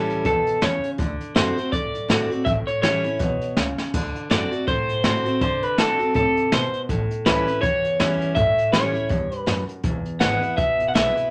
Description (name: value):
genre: rockabilly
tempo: 163 BPM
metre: 4/4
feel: swing 58% on 8ths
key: A mixolydian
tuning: A4 = 441 Hz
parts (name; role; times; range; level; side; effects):
- electric guitar through a small old amp; melody; 0.0-11.3 s; A4 to F#5; -25 LUFS; equal; none
- picked steel-string acoustic guitar; accompaniment; 0.0-11.3 s; E2 to F#4; -29 LUFS; equal; none
- upright bass; bass; 0.0-11.2 s; E1 to C3; -33 LUFS; equal; none
- jazz brush drum kit; drums; 0.1-11.2 s; hi-hat, kick drum, snare drum, splash cymbal; -27 LUFS; equal; none
room: moderate small room reverb, RT60 0.5 s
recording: none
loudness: -22 LUFS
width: mono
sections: 0.0-11.3 A section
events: drum fill 3.8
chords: 0.0 A7; 1.0 D7; 2.5 A7; 3.9 D7; 6.9 A7; 9.8 E7